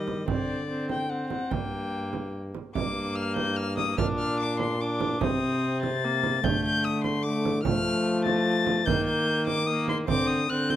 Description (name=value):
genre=classical, renaissance-style consort dance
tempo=147 BPM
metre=3/4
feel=straight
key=G minor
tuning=A4 = 439 Hz
part: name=warm violin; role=melody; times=0.0-10.8 s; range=D5 to A6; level=-30 LUFS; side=left 4 dB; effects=none
part: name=warm viola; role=accompaniment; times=0.0-10.8 s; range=G3 to D4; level=-30 LUFS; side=left 1 dB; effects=none
part: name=mellow trombone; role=bass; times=0.0-10.8 s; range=G2 to F3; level=-30 LUFS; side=equal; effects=none
part: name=frame drum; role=percussion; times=0.1-10.8 s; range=none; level=-31 LUFS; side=right 6 dB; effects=none
room=light reverb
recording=close, detailed microphones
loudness=-24 LUFS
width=side -12 dB against mid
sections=0.0-2.8 A section; 2.8-10.8 A section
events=none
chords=0.3 Csus2/D; 1.5 Gm; 4.0 Bb; 5.2 Cm; 6.4 D5; 7.7 F; 8.9 Eb; 10.1 Cmadd9/D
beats=| 0.28 0.69 1.10 | 1.51 1.93 2.34 | 2.75 3.17 3.57 | 3.98 4.39 4.80 | 5.21 5.62 6.03 | 6.43 6.84 7.25 | 7.65 8.06 8.46 | 8.87 9.28 9.68 | 10.09 10.49